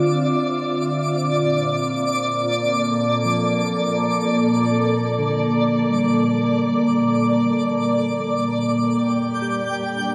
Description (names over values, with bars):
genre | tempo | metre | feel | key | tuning
ambient | free time | none | none | unclear | A4 = 441 Hz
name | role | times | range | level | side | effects
glassy FM pad | sustained chords | 0.0-10.1 s | Bb2 to E5 | -22 LUFS | equal | ensemble chorus, built-in reverb
tine electric piano | arpeggios | 0.0-10.1 s | D3 to A4 | -33 LUFS | equal | overdrive, tape echo
twinkling granular texture | texture | 0.0-10.1 s | D5 to G5 | -26 LUFS | equal | built-in reverb
room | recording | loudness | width
wet huge ambient reverb, RT60 8.4 s | none | -20 LUFS | mono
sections
0.0-10.1 A section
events
fade-in on tine electric piano 0.0-10.1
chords
0.0 Dm9; 1.2 Bbmaj7; 8.9 Gm